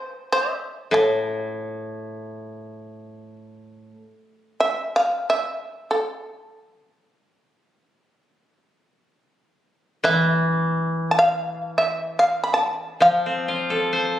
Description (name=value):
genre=japanese traditional, Japanese chamber music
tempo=free time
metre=none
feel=none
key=A hirajoshi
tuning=A4 = 439 Hz
part: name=shamisen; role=melody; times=0.0-14.2 s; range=A4 to B5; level=-20 LUFS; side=equal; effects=none
part: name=koto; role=accompaniment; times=0.9-3.9, 10.0-14.2 s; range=A2 to C5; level=-23 LUFS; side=equal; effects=none
room=moderate recital hall reverb, RT60 1.5 s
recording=recorded on a phone in the room, studio reverb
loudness=-20 LUFS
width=side -12 dB against mid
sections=0.0-4.0 A section; 4.0-14.2 A section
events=none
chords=none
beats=free time